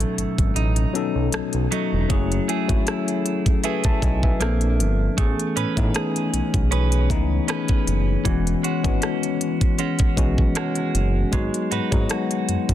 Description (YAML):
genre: contemporary R&B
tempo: 78 BPM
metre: 4/4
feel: swing 54% on 16ths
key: unclear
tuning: A4 = 441 Hz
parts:
  - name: tine electric piano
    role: accompaniment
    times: 0.0-12.7 s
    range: E3 to A5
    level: -24 LUFS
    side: moving between left 12 dB and left 1 dB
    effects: auto-pan
  - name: direct-recorded clean electric guitar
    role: arpeggios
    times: 0.0-12.7 s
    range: B2 to B4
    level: -28 LUFS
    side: right 9 dB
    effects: wide subtle chorus, ping-pong delay
  - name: smooth synth bass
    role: bass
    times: 0.0-12.7 s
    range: E1 to A2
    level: -23 LUFS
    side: equal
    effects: none
  - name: trap drum kit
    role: drums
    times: 0.0-12.7 s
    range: hi-hat, kick drum, rim click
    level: -23 LUFS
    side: equal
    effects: none
room: little or no reverb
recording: dense, heavily limited modern master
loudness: -19 LUFS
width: side -12 dB against mid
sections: 0.0-2.1 A section; 2.1-12.7 B section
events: kick muted 0.6-2.1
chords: 0.0 B7; 2.1 F#m9; 4.4 A#maj9; 5.2 Amaj9; 8.3 E69; 11.3 G#m7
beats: 0.56 1.33 | 2.10 2.87 3.64 4.41 | 5.18 5.95 6.71 7.48 | 8.25 9.02 9.79 10.56 | 11.33 12.10